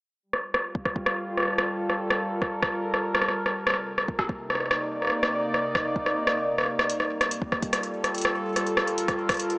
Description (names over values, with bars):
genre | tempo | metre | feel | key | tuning
IDM | 144 BPM | 4/4 | straight | unclear | A4 = 440 Hz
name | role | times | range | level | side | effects
warbly tape-like pad | sustained chords | 0.2-9.6 s | C3 to D5 | -28 LUFS | equal | chorus, built-in reverb, sidechain pumping
electro analog drum machine | drums | 0.3-9.6 s | hi-hat, rim click | -25 LUFS | equal | low-pass filter on snare, low-pass filter on hats, low-pass filter on room, digital delay
electronic kick drum | drums | 0.8-9.4 s | none | -32 LUFS | equal | none
room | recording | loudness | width
moderate lush hall reverb, RT60 1.8 s | small speaker sound | -24 LUFS | side -26 dB against mid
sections
0.2-9.6 A section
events
filter sweep on drum 0.2-9.6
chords
0.2 Gm9; 3.6 Cm9; 6.9 Gm9